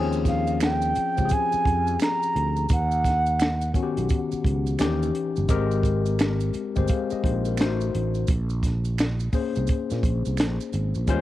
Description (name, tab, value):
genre	R&B, neo-soul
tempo	86 BPM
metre	4/4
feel	swing 64% on 16ths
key	Bb dorian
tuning	A4 = 439 Hz
part	tine electric piano	accompaniment	0.0-11.2 s	Eb3 to F5	-27 LUFS	left 6 dB	medium stereo tremolo, cassette tape
part	sustaining fretless electric bass	bass	0.0-11.2 s	G1 to Bb2	-25 LUFS	right 1 dB	none
part	maracas and finger snaps	percussion	0.1-11.2 s	none	-41 LUFS	right 10 dB	none
part	breathy mellow concert flute	melody	0.3-3.7 s	F5 to Bb5	-25 LUFS	right 2 dB	tape echo
part	compact cocktail drum kit	drums	0.3-11.2 s	finger snaps, hi-hat, kick drum, snare drum	-24 LUFS	right 1 dB	cassette tape
room	light reverb, small room ambience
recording	home recording on cassette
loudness	-22 LUFS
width	side -14 dB against mid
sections	0.0-11.2 A section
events	none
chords	0.0 Eb13sus4; 2.7 Eb7alt; 4.8 Eb7b9; 5.5 Abmaj9; 7.6 Adim7; 8.3 Bbm9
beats	0.61 1.31 2.00 | 2.70 3.40 4.10 4.79 | 5.49 6.19 6.89 7.58 | 8.28 8.98 9.68 10.38 | 11.07